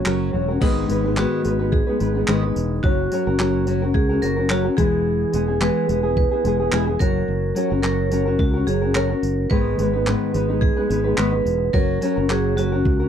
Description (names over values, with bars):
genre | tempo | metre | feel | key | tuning
acoustic pop | 108 BPM | 4/4 | swing 55% on 16ths | G# minor | A4 = 439 Hz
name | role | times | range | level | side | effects
vibraphone with medium hard mallets | second line | 0.0-13.1 s | D#4 to B4 | -24 LUFS | right 3 dB | none
nylon-string guitar | accompaniment | 0.0-13.1 s | G#2 to B4 | -22 LUFS | left 2 dB | none
fretless electric bass | bass | 0.1-13.1 s | E1 to C#2 | -24 LUFS | equal | wide subtle chorus
breakbeat sampler-style drum kit | drums | 0.1-13.0 s | crash cymbal, handclaps, kick drum, tambourine | -22 LUFS | equal | none
room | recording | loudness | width
light reverb | dry, close 1970s-style studio recording | -18 LUFS | side -8 dB against mid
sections
0.6-13.1 A section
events
none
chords
0.0 F#; 0.6 G#m; 2.8 F#; 4.8 E; 7.0 F#; 9.5 G#m; 11.7 F#